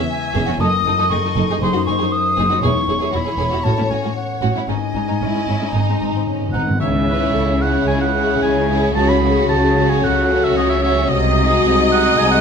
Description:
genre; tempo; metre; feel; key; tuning
classical, dramatic, fast romantic movement for symphony orchestra; 110-120 BPM; 4/4; straight; C# minor; A4 = 440 Hz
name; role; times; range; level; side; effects
warm symphonic violin section; melody; 0.0-12.4 s; G#4 to E5; -28 LUFS; left 1 dB; none
warm symphonic viola section; accompaniment; 0.0-12.4 s; B#3 to D#5; -23 LUFS; equal; none
concert harp; arpeggios; 0.0-12.4 s; E2 to C#6; -24 LUFS; left 5 dB; none
warm symphonic cello section; bass; 0.0-12.4 s; E2 to C#3; -24 LUFS; left 1 dB; none
concert flute; second line; 0.1-6.5 s; F#5 to D#6; -21 LUFS; left 1 dB; none
warm symphonic violin section; second line; 0.3-12.4 s; C#4 to A4; -24 LUFS; equal; none
rich symphonic double bass section; bass; 0.3-12.4 s; E1 to C#2; -22 LUFS; right 2 dB; none
timpani; percussion; 5.7-6.8 s; G#2; -25 LUFS; equal; none
clear oboe; second line; 6.5-12.4 s; D#5 to B5; -21 LUFS; right 3 dB; none
mellow French horn section; sustained chords; 6.8-12.4 s; F#3 to F#4; -22 LUFS; left 3 dB; none
room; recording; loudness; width
wet stone room reverb, RT60 1.0 s; none; -15 LUFS; side -6 dB against mid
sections
0.0-6.8 A section; 6.8-12.4 B section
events
timpani fill 5.7-6.8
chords
0.0 C#m/E; 0.6 D#dim/F#; 1.6 G#7/F#; 2.6 C#m/E; 3.6 F#m/A; 4.7 G#sus4; 5.7 G#; 6.8 C#m; 9.0 F#m/C#; 11.1 G#7/B#

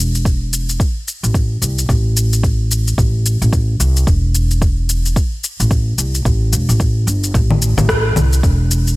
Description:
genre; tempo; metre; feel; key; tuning
organic downtempo; 110 BPM; 4/4; swing 60% on 16ths; A minor; A4 = 440 Hz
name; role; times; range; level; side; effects
upright bass; bass; 0.0-9.0 s; E1 to C2; -15 LUFS; equal; tube saturation
electronic shaker, congas and rim click; drums; 0.1-9.0 s; none; -21 LUFS; left 2 dB; overdrive, gated reverb
electronic kick drum; drums; 0.3-8.6 s; none; -16 LUFS; equal; overdrive
room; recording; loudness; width
digital ambience; bright 1980s-style digital production; -13 LUFS; side -21 dB against mid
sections
0.0-9.0 A section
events
none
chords
none

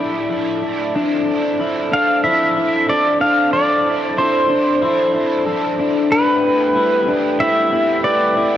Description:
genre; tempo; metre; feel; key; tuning
dream pop; 93 BPM; 4/4; straight; unclear; A4 = 442 Hz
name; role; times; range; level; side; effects
pedal steel guitar; melody; 0.0-8.6 s; A4 to F5; -16 LUFS; equal; cassette tape, analog delay
overdriven electric guitar; accompaniment; 0.0-8.6 s; A2 to E4; -25 LUFS; right 4 dB; harmonic tremolo, ensemble chorus, cassette tape
glass harmonica; sustained chords; 0.0-8.6 s; A3 to A5; -23 LUFS; right 1 dB; stereo widening, cassette tape
clean electric guitar; arpeggios; 0.0-8.6 s; D4 to B4; -20 LUFS; left 4 dB; lush chorus, cassette tape, analog delay
room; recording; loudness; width
wet lush hall reverb, RT60 2.4 s; home recording on cassette; -14 LUFS; side -11 dB against mid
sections
1.0-8.6 A section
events
none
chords
0.0 Dmadd9; 1.0 Dm9; 6.1 Am9

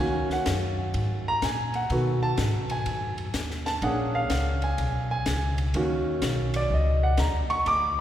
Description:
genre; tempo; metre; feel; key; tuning
jazz, small-group swing and bop; 125 BPM; 4/4; swing 67% on 8ths; Eb minor; A4 = 440 Hz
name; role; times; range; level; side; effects
warm grand piano; accompaniment; 0.0-8.0 s; Eb3 to D6; -27 LUFS; right 1 dB; none
upright bass; bass; 0.0-8.0 s; Bb1 to B2; -27 LUFS; equal; none
compact cocktail drum kit; drums; 0.3-7.8 s; hi-hat, kick drum, ride cymbal, snare drum; -34 LUFS; left 2 dB; none
room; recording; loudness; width
wet church reverb, RT60 3.5 s; recorded in a church or concert hall; -24 LUFS; side -11 dB against mid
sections
0.0-8.0 A section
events
none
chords
0.0 Ebm7; 1.9 B7; 3.8 Bb7#9; 5.7 Ebm7

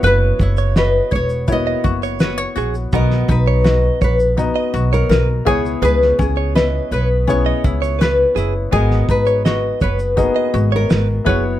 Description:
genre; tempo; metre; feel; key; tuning
acoustic pop; 83 BPM; 4/4; straight; unclear; A4 = 440 Hz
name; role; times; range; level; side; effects
nylon-string guitar; melody; 0.0-11.6 s; G#4 to D#5; -20 LUFS; left 2 dB; none
ukulele; accompaniment; 0.0-11.6 s; C#4 to C#5; -24 LUFS; left 5 dB; none
warm grand piano; accompaniment; 0.0-11.6 s; A#3 to A#5; -24 LUFS; left 5 dB; none
direct-recorded clean electric guitar; arpeggios; 0.0-11.4 s; B3 to D#5; -24 LUFS; right 12 dB; none
upright bass; bass; 0.0-11.6 s; E1 to C#2; -18 LUFS; right 1 dB; none
cloth-damped thuddy drum kit; drums; 0.0-11.4 s; kick drum, shaker, snare drum; -19 LUFS; equal; none
room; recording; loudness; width
little or no reverb; close, detailed microphones; -14 LUFS; side -13 dB against mid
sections
0.0-11.6 A section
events
none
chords
0.0 F#7sus4; 2.9 Bmaj7; 5.5 C#m7; 8.7 G#m7

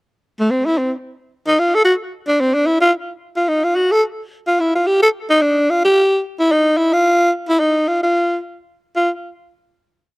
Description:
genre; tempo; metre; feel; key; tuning
jazz; 220 BPM; 4/4; swing 59% on 8ths; F major; A4 = 436 Hz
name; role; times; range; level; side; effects
growling tenor saxophone; solo; 0.4-9.1 s; A3 to A4; -14 LUFS; equal; slapback echo
room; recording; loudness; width
little or no reverb; recorded outdoors, with no room sound; -14 LUFS; side -25 dB against mid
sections
0.2-8.9 A section; 8.9-10.0 final note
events
none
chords
none

